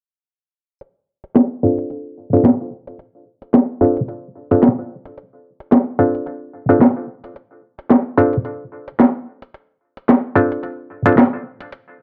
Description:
glitch hop; 110 BPM; 4/4; swing 57% on 16ths; D minor pentatonic; A4 = 438 Hz
drum and bass drum kit; drums; 0.8-11.8 s; hi-hat, snare drum; -15 LUFS; equal; overdrive, studio reverb
muted clav; stabs; 1.6-11.2 s; C4 to A4; -19 LUFS; equal; low-pass filter, tape echo
moderate studio ambience, RT60 0.5 s; low-pass filter; -17 LUFS; mono
0.8-12.0 A section
filter sweep on clav 0.8-12.0; filter sweep 0.8-12.0
0.8 Dm7

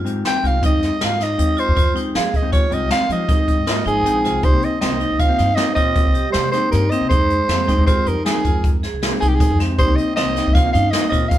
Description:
progressive instrumental, band music in an uneven meter; 157 BPM; 7/4; straight; F minor; A4 = 440 Hz
hollow-body jazz guitar; accompaniment; 0.0-11.4 s; Ab3 to G5; -26 LUFS; left 4 dB
upright bass; bass; 0.0-11.3 s; Ab1 to F3; -22 LUFS; equal
vibraphone with hard mallets; arpeggios; 0.1-11.4 s; C4 to Ab4; -24 LUFS; equal
jazz brush drum kit; drums; 0.1-11.4 s; hi-hat, kick drum, snare drum; -20 LUFS; equal
growling soprano saxophone; melody; 0.3-11.4 s; G4 to G5; -20 LUFS; right 1 dB
dark trombone; second line; 3.9-11.4 s; Eb3 to Db4; -28 LUFS; right 2 dB
moderate stone room reverb, RT60 1.3 s; band playing live in one room; -15 LUFS; side -12 dB against mid
0.0-4.4 A section; 4.4-11.4 B section
soprano saxophone solo 0.0-4.4
0.0 Fm7; 4.4 Cm7; 7.1 Fm7; 9.8 Cm7

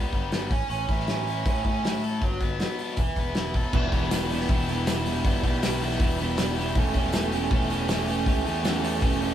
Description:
indie rock; 159 BPM; 4/4; straight; A4 = 436 Hz
overdriven electric guitar; riff; 0.0-9.3 s; E3 to A4; -29 LUFS; equal
fuzz picked electric bass; bass; 0.0-9.3 s; E1 to A2; -30 LUFS; left 1 dB; overdrive
loose indie drum kit; drums; 0.1-9.3 s; crash cymbal, hi-hat, kick drum, snare drum; -27 LUFS; equal
twelve-string electric guitar; riff; 3.7-9.3 s; E2 to G4; -29 LUFS; right 3 dB
tambourine; percussion; 4.1-8.7 s; -42 LUFS; right 6 dB
moderate small room reverb, RT60 0.5 s; band playing live in one room; -23 LUFS; side -10 dB against mid
0.0-3.7 A section; 3.7-9.3 B section
0.0 Em; 0.5 A; 2.2 Gmaj7; 3.0 Esus4; 3.7 Em7; 6.8 A7/E

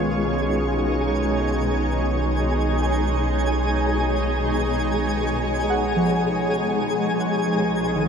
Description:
ambient; free time; B lydian; A4 = 439 Hz
shimmering ambient pad; sustained chords; 0.0-8.1 s; B2 to C#5; -24 LUFS; equal; chorus, built-in reverb
muted felt-like synth keys; arpeggios; 0.0-8.1 s; D#3 to F#5; -27 LUFS; right 1 dB; chorus, ping-pong delay
deep rumbling drone; bass; 0.0-8.1 s; B1; -26 LUFS; equal; built-in reverb
twinkling granular texture; texture; 0.0-8.1 s; G#4 to G#5; -27 LUFS; left 2 dB; built-in reverb
wet huge ambient reverb, RT60 7.9 s; -20 LUFS; side -6 dB against mid
0.0-8.1 A section
0.0 B69

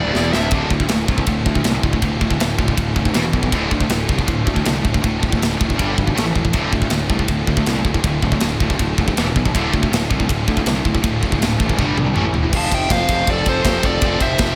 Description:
heavy metal; 160 BPM; 4/4; straight; D minor; A4 = 440 Hz
dark smooth lead guitar; melody; 0.0-0.5, 12.6-14.6 s; C5 to A5; -24 LUFS; equal; overdrive, delay
distorted electric guitar; riff; 0.0-14.6 s; D2 to A3; -26 LUFS; equal; overdrive
high-gain distorted guitar; riff; 0.0-14.6 s; D2 to F4; -28 LUFS; equal; distortion
tight distorted guitar; riff; 0.0-12.5 s; D2 to A3; -27 LUFS; equal
fuzz picked electric bass; bass; 0.0-14.5 s; D1 to D2; -25 LUFS; equal; overdrive
tight metal drum kit; drums; 0.2-14.5 s; crash cymbal, kick drum, ride cymbal, snare drum, toms; -22 LUFS; equal
smooth overdriven lead guitar; second line; 12.5-14.6 s; A4 to F5; -28 LUFS; equal
light reverb; -18 LUFS; mono
0.5-12.5 A section; 12.5-14.6 B section
drum fill 0.1-0.5, 11.8-12.5
0.0 N.C.; 0.5 Dm; 3.2 E5; 3.5 Dm; 5.8 G5; 6.2 A5; 6.5 Dm; 9.2 E5; 9.5 Dm; 11.8 G5; 12.2 A5; 12.5 F

